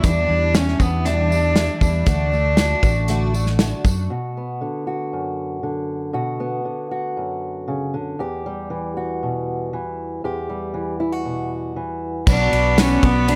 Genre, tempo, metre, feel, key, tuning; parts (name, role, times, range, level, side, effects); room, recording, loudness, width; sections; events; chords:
indie folk with a building arrangement; 118 BPM; 4/4; straight; A4 = 440 Hz
warm cello; melody; 0.0-3.6, 12.3-13.4 s; B3 to D4; -23 LUFS; equal
picked twelve-string acoustic guitar; accompaniment; 0.0-4.1, 12.3-13.4 s; E2 to F#4; -28 LUFS; equal; analog chorus
fingered electric bass; bass; 0.0-4.1, 12.3-13.4 s; A1 to F#2; -23 LUFS; equal
natural country drum kit; drums; 0.0-4.0, 12.3-13.4 s; crash cymbal, hi-hat, kick drum, ride cymbal, snare drum; -21 LUFS; equal
tambourine; percussion; 0.0-4.0, 12.3-12.9 s; -40 LUFS; equal
fingerpicked old ladder-braced acoustic guitar; accompaniment; 4.1-12.3 s; E2 to G4; -27 LUFS; equal
warm fiddle; second line; 12.3-13.4 s; B3; -25 LUFS; equal
hand-pumped harmonium; sustained chords; 12.3-13.4 s; F#4 to B5; -31 LUFS; equal
light reverb, small room ambience; -21 LUFS; mono
0.0-4.1 A section; 4.1-12.3 B section; 12.3-13.4 A section
0.0 Em7; 2.1 D; 4.1 Bm; 8.2 Em; 12.3 Bm